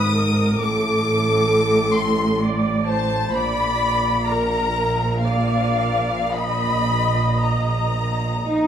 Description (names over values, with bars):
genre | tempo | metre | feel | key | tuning
classical, slow romantic movement for string orchestra | 52-66 BPM | 3/4 | rubato | unclear | A4 = 440 Hz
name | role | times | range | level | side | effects
rich chamber violin section | melody | 0.0-8.7 s | F5 to Eb6 | -26 LUFS | left 4 dB | none
rich chamber violin section | second line | 0.0-8.7 s | F5 to Eb6 | -25 LUFS | left 4 dB | none
rich chamber viola section | accompaniment | 0.0-8.7 s | A4 to Eb5 | -23 LUFS | right 1 dB | none
clear chamber double bass section | bass | 0.0-8.7 s | Ab1 to Bb1 | -26 LUFS | right 2 dB | none
rich studio cello section | bass | 0.0-8.7 s | Ab2 to Eb4 | -23 LUFS | right 1 dB | none
room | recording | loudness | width
moderate recital hall reverb, RT60 1.5 s | none | -18 LUFS | side -9 dB against mid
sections
0.0-8.7 A section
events
none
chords
0.0 Abm; 0.6 Amadd11; 3.3 Eb5/Bb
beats
| 0.60 1.51 2.42 | 3.33 4.25 5.21 | 6.33 7.43 8.48